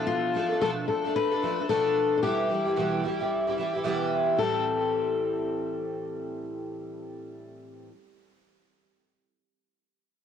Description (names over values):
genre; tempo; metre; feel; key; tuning
acoustic pop; 111 BPM; 4/4; swing 60% on 16ths; A minor; A4 = 440 Hz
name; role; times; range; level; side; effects
picked twelve-string acoustic guitar; accompaniment; 0.0-7.9 s; E2 to A4; -29 LUFS; right 2 dB; double-tracked left and right, cassette tape
picked steel-string acoustic guitar; melody; 0.1-7.5 s; F4 to B4; -28 LUFS; left 6 dB; cassette tape
room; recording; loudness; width
moderate lush hall reverb, RT60 2.7 s; home recording on cassette; -25 LUFS; side -8 dB against mid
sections
0.0-4.4 A section; 4.4-8.7 B section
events
none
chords
0.0 Bm7b5; 2.2 Em; 4.4 Am7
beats
| 0.07 0.61 1.15 1.69 | 2.23 2.76 3.30 3.84 | 4.38 4.92 5.46 5.99 | 6.53 7.07 7.61